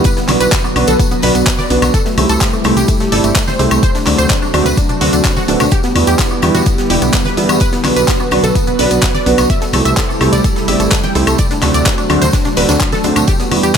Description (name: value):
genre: progressive house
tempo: 127 BPM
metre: 4/4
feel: straight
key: unclear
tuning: A4 = 440 Hz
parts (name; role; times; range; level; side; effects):
- airy breathy pad; sustained chords; 0.0-13.8 s; C3 to B4; -18 LUFS; equal; chorus, sidechain pumping
- crisp fusion drum kit; drums; 0.0-13.8 s; hi-hat, snare drum; -28 LUFS; right 4 dB; none
- wide unison pluck; arpeggios; 0.1-13.8 s; A3 to G5; -18 LUFS; equal; sidechain pumping, ping-pong delay
- deep house drum kit; drums; 0.1-13.8 s; handclaps, hi-hat, woodblock; -18 LUFS; left 2 dB; none
- electronic kick drum; drums; 0.1-13.8 s; none; -15 LUFS; equal; none
- tambourine; percussion; 0.1-13.8 s; none; -26 LUFS; left 2 dB; none
- felt-muted upright piano; stabs; 0.3-13.8 s; G3 to D5; -18 LUFS; right 4 dB; sidechain pumping, ping-pong delay
- dark detuned saw bass; bass; 0.3-13.7 s; D1 to E2; -17 LUFS; equal; sidechain pumping
- congas and woodblock; percussion; 0.3-13.7 s; none; -26 LUFS; right 2 dB; none
room: light reverb, small room reverb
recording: none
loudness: -10 LUFS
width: side -7 dB against mid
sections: 0.0-13.8 A section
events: none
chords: 0.1 Bm; 1.9 Am7/C; 3.8 D7; 5.7 Em7; 7.6 Bm; 9.5 Am7/C; 11.4 D7